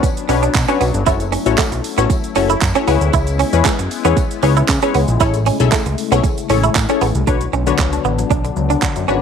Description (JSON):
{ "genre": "dance-pop", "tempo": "116 BPM", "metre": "4/4", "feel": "straight", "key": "B dorian", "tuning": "A4 = 439 Hz", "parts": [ { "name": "funky polysynth comp", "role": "accompaniment", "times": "0.0-9.2 s", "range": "C#4 to E5", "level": "-19 LUFS", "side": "left 12 dB", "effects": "chorus, sidechain pumping" }, { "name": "sweeping resonant pad", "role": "sustained chords", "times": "0.0-9.2 s", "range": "C#3 to E4", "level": "-24 LUFS", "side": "left 12 dB", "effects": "chorus, sidechain pumping" }, { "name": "direct-recorded clean electric guitar", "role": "riff", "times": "0.0-9.2 s", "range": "G#3 to E4", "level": "-20 LUFS", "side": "right 13 dB", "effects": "ensemble chorus" }, { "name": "pop drum kit", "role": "drums", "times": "0.0-9.2 s", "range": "handclaps, hi-hat, kick drum, shaker", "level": "-19 LUFS", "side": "right 3 dB", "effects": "none" }, { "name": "tambourine", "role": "percussion", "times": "0.0-7.1 s", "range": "none", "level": "-36 LUFS", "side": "left 11 dB", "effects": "none" }, { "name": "fat analog bass", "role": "bass", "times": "0.3-9.2 s", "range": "F#1 to C#3", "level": "-18 LUFS", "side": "equal", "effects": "sidechain pumping" }, { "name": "analog pluck", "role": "arpeggios", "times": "7.3-9.2 s", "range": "D3 to D4", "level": "-24 LUFS", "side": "left 12 dB", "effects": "chorus, sidechain pumping, slapback echo" } ], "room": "light reverb, digital ambience", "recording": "1960s-style stereo with parts hard left and right", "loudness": "-13 LUFS", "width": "side -7 dB against mid", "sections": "0.0-7.3 A section; 7.3-9.2 B section", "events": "none", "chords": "0.0 Bmadd9; 1.1 F#m7; 2.9 C#m7; 5.2 Amaj7; 7.3 Bmadd9" }